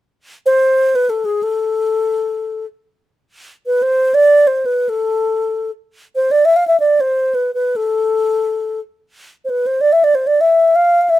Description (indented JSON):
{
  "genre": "arabic",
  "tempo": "free time",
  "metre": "none",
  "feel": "none",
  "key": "A maqam nahawand",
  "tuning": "A4 = 440 Hz",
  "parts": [
    { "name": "wooden-headed alto flute", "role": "melody", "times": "0.5-11.2 s", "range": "G#4 to F5", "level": "-13 LUFS", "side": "equal", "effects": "none" }
  ],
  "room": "little or no reverb",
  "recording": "close, detailed microphones",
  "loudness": "-13 LUFS",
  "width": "side -14 dB against mid",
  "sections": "0.1-11.2 A section",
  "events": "none",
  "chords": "none"
}